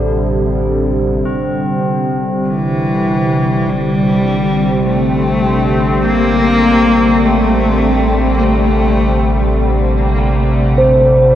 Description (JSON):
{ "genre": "ambient", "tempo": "50 BPM", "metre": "4/4", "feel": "straight", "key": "A phrygian", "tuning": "A4 = 438 Hz", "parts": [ { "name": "sweeping resonant pad", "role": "sustained chords", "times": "0.0-11.4 s", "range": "C3 to C4", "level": "-16 LUFS", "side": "equal", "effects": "chorus" }, { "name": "tubular bells", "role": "arpeggios", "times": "0.0-11.4 s", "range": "C4 to D4", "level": "-26 LUFS", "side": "left 2 dB", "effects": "diffuse ambient delay" }, { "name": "deep rumbling drone", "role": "drone", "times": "0.0-11.4 s", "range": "A1 to C3", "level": "-18 LUFS", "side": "equal", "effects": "built-in reverb, wide subtle chorus" }, { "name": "bronze singing bowl", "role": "texture", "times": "0.0-1.3, 10.8-11.4 s", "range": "C5", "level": "-17 LUFS", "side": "right 2 dB", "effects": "none" }, { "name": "warm cello", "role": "melody", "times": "2.5-9.6 s", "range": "E3 to Bb3", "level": "-15 LUFS", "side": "left 1 dB", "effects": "diffuse ambient delay" } ], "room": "wet cathedral reverb, RT60 5.9 s", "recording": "worn, warbling old tape, cassette tape, warbly pitch drift", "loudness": "-11 LUFS", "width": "side -11 dB against mid", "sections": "0.0-1.3 A section; 1.3-11.4 B section", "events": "filter sweep on synth drone 1.3-11.4", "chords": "0.0 C69/A; 1.3 Am" }